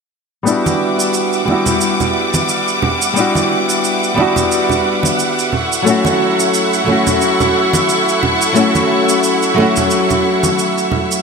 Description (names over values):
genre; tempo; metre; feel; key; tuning
sunset chillout; 89 BPM; 4/4; swing 57% on 16ths; E dorian; A4 = 444 Hz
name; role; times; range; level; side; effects
nylon-string guitar; accompaniment; 0.4-11.2 s; F#3 to F#4; -15 LUFS; left 1 dB; auto-pan, low-pass filter, digital delay
clear studio string section; sustained chords; 0.5-11.2 s; G3 to D6; -17 LUFS; right 1 dB; none
shaker; drums; 0.5-11.2 s; none; -22 LUFS; right 4 dB; none
congas; percussion; 0.7-11.1 s; none; -22 LUFS; right 2 dB; none
room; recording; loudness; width
wet lush hall reverb, RT60 2.8 s; bright 1980s-style digital production; -12 LUFS; side -5 dB against mid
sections
0.5-11.2 A section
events
filter sweep on nylon-string guitar 0.5-11.2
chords
0.5 Em9; 5.5 F#m7